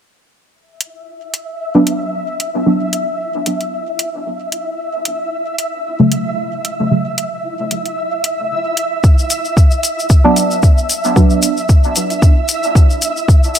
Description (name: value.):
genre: dub techno.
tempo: 113 BPM.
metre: 4/4.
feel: swing 55% on 16ths.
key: B minor.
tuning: A4 = 440 Hz.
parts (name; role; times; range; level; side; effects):
flickering grainy texture; texture; 1.0-13.6 s; E5; -20 LUFS; right 1 dB; built-in reverb, sidechain pumping.
electronic hi-hat; drums; 0.8-13.6 s; none; -19 LUFS; equal; none.
deep mellow chord stab; stabs; 1.7-11.5 s; C#3 to D4; -16 LUFS; right 1 dB; chorus, phaser, sidechain pumping, dub echo.
electronic kick drum; drums; 9.0-13.4 s; none; -9 LUFS; equal; none.
tube shaker; percussion; 9.0-13.6 s; none; -20 LUFS; left 3 dB; none.
room: light reverb.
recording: none.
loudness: -13 LUFS.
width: side -9 dB against mid.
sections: 0.5-13.6 A section.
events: none.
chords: 0.5 Bm; 4.8 F#m; 9.0 Bm.